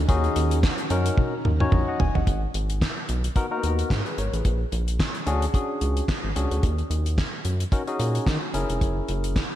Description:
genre	early-eighties boogie funk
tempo	110 BPM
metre	4/4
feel	swing 56% on 16ths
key	G# minor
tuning	A4 = 438 Hz
part	string machine, full ensemble	sustained chords	0.0-2.2 s	D#3 to F#4	-33 LUFS	right 1 dB	ensemble chorus
part	rubbery square bass	bass	0.0-9.4 s	E#1 to D#3	-25 LUFS	equal	none
part	barky tine electric piano	accompaniment	0.1-9.4 s	A#3 to G#5	-28 LUFS	left 2 dB	overdrive, slapback echo
part	damped 70s drum kit	drums	0.1-9.5 s	handclaps, hi-hat, kick drum, snare drum, toms	-25 LUFS	equal	none
room	light reverb, small room reverb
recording	none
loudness	-22 LUFS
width	side -12 dB against mid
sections	0.0-2.3 A section; 2.3-9.6 B section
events	drum fill 1.2-2.3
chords	0.0 D#m7; 2.3 G#m9; 4.5 A#7alt; 6.6 D#m7; 8.5 F#7

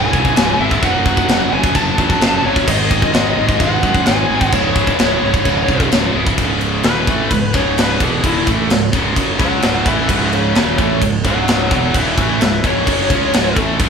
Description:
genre	heavy metal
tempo	130 BPM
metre	4/4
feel	straight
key	C# harmonic minor, C# minor from 6.4 s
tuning	A4 = 442 Hz
part	bluesy overdriven lead guitar	melody	0.0-13.6 s	E4 to A5	-19 LUFS	left 1 dB	distortion
part	distorted electric guitar	riff	0.0-13.9 s	C#2 to C#4	-21 LUFS	right 7 dB	distortion
part	heavy high-gain guitar	riff	0.0-13.9 s	C#2 to C#4	-21 LUFS	left 8 dB	distortion
part	high-gain distorted guitar	riff	0.0-13.9 s	C#2 to G#4	-22 LUFS	equal	distortion
part	fuzz fingered electric bass	bass	0.0-13.9 s	C#1 to F#2	-22 LUFS	equal	overdrive
part	tight metal drum kit	drums	0.1-13.9 s	china cymbal, crash cymbal, kick drum, snare drum	-17 LUFS	equal	none
room	light reverb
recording	band playing live in one room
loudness	-12 LUFS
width	side -6 dB against mid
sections	0.0-6.4 A section; 6.4-13.9 B section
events	lead electric guitar solo 6.4-13.9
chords	0.0 C#m; 0.8 F#m; 2.7 G#; 4.5 C#m

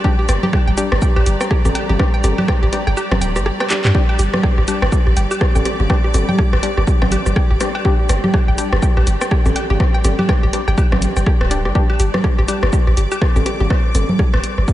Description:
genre	minimal techno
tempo	123 BPM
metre	4/4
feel	swing 59% on 16ths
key	G minor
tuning	A4 = 439 Hz
part	hollow square pluck	riff	0.0-13.6 s	G4 to G5	-25 LUFS	equal	chorus, sidechain pumping, analog delay
part	wavetable chord stab	stabs	0.0-12.6 s	G3 to G4	-27 LUFS	left 3 dB	none
part	electronic kick drum	drums	0.0-14.7 s	none	-16 LUFS	equal	none
part	electronic rim click, congas, woodblock and bongos	percussion	0.0-14.7 s	none	-21 LUFS	equal	overdrive, diffuse ambient delay
part	rich symphonic string section	texture	0.0-14.7 s	G3 to D6	-26 LUFS	right 1 dB	sidechain pumping
part	punchy sub bass	bass	0.3-14.6 s	D1 to G2	-17 LUFS	equal	sidechain pumping
part	punchy analog drum machine	drums	0.3-14.7 s	handclaps, hi-hat, rim click, shaker	-27 LUFS	equal	none
room	light reverb, digital ambience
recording	nothing above 10.5 kHz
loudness	-14 LUFS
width	side -14 dB against mid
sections	0.0-14.7 A section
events	kick drops out 3.0-3.9; drum fill 3.7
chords	0.0 G5

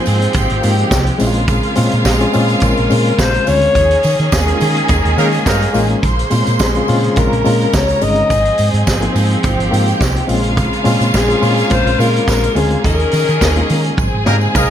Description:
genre	disco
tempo	106 BPM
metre	4/4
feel	straight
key	Bb dorian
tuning	A4 = 440 Hz
part	clear studio violin section	second line	0.0-14.7 s	Eb4 to C6	-21 LUFS	right 1 dB	none
part	bright reed electric piano	accompaniment	0.0-14.7 s	Ab3 to Ab4	-19 LUFS	left 3 dB	fast tremolo
part	clear studio string section	sustained chords	0.0-14.7 s	Db3 to Ab4	-22 LUFS	right 2 dB	none
part	hollow-body short-scale fingered electric bass	bass	0.1-14.7 s	G1 to Eb3	-16 LUFS	right 1 dB	none
part	vintage drum kit	drums	0.1-14.7 s	hi-hat, kick drum, snare drum, toms	-19 LUFS	right 1 dB	none
part	tambourine	percussion	0.1-14.7 s	none	-31 LUFS	right 9 dB	none
part	breathy alto saxophone	melody	2.1-13.9 s	Ab4 to Eb5	-17 LUFS	left 4 dB	slapback echo, plate reverb
part	clear horn section	stabs	5.2-5.9, 14.3-14.7 s	Bb3 to Bb4	-18 LUFS	equal	none
room	moderate large studio reverb, RT60 0.8 s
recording	none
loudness	-11 LUFS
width	side -10 dB against mid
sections	0.0-14.7 A section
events	band accent 3.8-6.0, 12.8-14.7; drum fill 14.0-14.7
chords	0.0 Ab6; 1.2 Bbm9; 3.8 Eb7sus4; 6.0 Bbm9; 8.3 Ab6; 10.3 Bbm9; 12.8 Eb7sus4; 14.0 Abmaj9

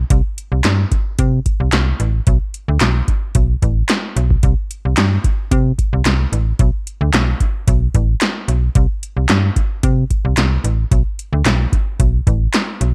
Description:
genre	early-eighties boogie funk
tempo	111 BPM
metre	4/4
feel	straight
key	unclear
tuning	A4 = 436 Hz
part	slap-like FM bass	bass	0.0-12.9 s	A1 to C3	-18 LUFS	equal	none
part	electro analog drum machine	drums	0.1-12.9 s	handclaps, hi-hat, kick drum, snare drum	-19 LUFS	equal	overdrive, gated reverb
room	digital ambience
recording	none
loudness	-16 LUFS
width	mono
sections	0.0-12.9 A section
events	none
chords	none

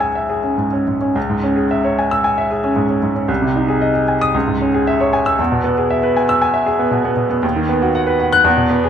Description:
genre	classical, virtuoso piano study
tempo	116 BPM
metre	4/4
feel	rubato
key	C# minor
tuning	A4 = 440 Hz
part	clear baby grand piano	solo	0.0-8.9 s	B#1 to F#6	-14 LUFS	equal	none
room	moderate large studio reverb, RT60 0.8 s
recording	minimal, uncompressed stereo recording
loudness	-14 LUFS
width	side -8 dB against mid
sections	0.0-1.2 A section; 1.2-8.9 A section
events	none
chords	0.0 C#m; 3.3 G#/B#; 4.3 C#m; 5.4 E; 7.4 B/D#

